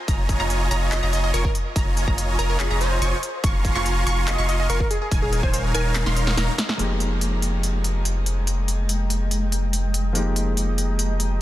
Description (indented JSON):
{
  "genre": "future bass",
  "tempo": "143 BPM",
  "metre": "4/4",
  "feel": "half-time",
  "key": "F minor",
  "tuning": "A4 = 444 Hz",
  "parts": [
    { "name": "wide unison pluck", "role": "arpeggios", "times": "0.1-6.5 s", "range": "Ab5 to Db6", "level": "-32 LUFS", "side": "right 2 dB", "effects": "sidechain pumping" },
    { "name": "dense compressed supersaw", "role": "riff", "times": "0.1-6.5 s", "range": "Eb4 to Db6", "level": "-28 LUFS", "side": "right 1 dB", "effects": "sidechain pumping, low-pass filter, tape echo" },
    { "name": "saturated sub bass", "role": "bass", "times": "0.1-11.4 s", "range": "Eb1 to F1", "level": "-23 LUFS", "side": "equal", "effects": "sidechain pumping" },
    { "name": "big-room dance drum kit", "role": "drums", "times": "0.1-11.3 s", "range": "handclaps, hi-hat, snare drum", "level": "-29 LUFS", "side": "equal", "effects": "none" },
    { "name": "electronic kick drum", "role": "drums", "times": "0.1-5.5 s", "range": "none", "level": "-23 LUFS", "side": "equal", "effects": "none" },
    { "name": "plucky unison lead", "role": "melody", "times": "0.9-6.1 s", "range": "Ab4 to Eb5", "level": "-31 LUFS", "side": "equal", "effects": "sidechain pumping, tape echo" },
    { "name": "warm concert grand piano", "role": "accompaniment", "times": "6.8-11.4 s", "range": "F3 to G4", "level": "-29 LUFS", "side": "left 1 dB", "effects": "sidechain pumping, tape echo" },
    { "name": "shimmering ambient pad", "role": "sustained chords", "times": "8.1-11.4 s", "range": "Ab3 to Bb5", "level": "-32 LUFS", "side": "right 1 dB", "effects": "chorus, built-in reverb, sidechain pumping" }
  ],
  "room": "little or no reverb",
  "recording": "dense, heavily limited modern master",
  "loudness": "-20 LUFS",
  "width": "side -14 dB against mid",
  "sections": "0.0-6.8 A section; 6.8-11.4 B section",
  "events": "drop 0.0-6.8; drum fill 6.0-6.8; band accent 6.7; filter sweep on ambient pad 6.8-11.4",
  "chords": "0.1 Db6/F; 3.4 Bbm9/F; 5.1 Eb9sus4; 6.8 Fm11",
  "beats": "| 0.08 0.50 0.92 1.34 | 1.76 2.18 2.60 3.02 | 3.44 3.86 4.28 4.70 | 5.12 5.54 5.96 6.38 | 6.79 7.21 7.63 8.05 | 8.47 8.89 9.31 9.73 | 10.15 10.57 10.99 11.41"
}